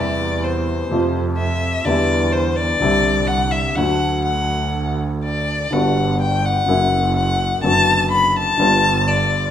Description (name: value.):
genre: tango.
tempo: 125 BPM.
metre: 4/4.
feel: rubato.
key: G major.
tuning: A4 = 440 Hz.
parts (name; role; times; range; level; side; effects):
warm violin; second line; 0.0-9.5 s; C5 to B5; -19 LUFS; left 3 dB; none.
warm baby grand piano; accompaniment; 0.0-9.5 s; G1 to F#4; -21 LUFS; left 1 dB; none.
clear double bass; bass; 0.0-9.5 s; F#1 to F2; -22 LUFS; right 3 dB; none.
room: moderate large studio reverb, RT60 1.3 s.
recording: minimal, uncompressed stereo recording.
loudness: -16 LUFS.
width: side -10 dB against mid.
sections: 0.0-9.5 A section.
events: violin solo 0.0-9.5.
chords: 0.0 C/E; 0.9 F; 1.9 Em7; 2.8 Cadd9; 3.8 D; 5.7 Gmaj7; 6.7 F#7; 7.6 Bm/F#; 8.6 G7.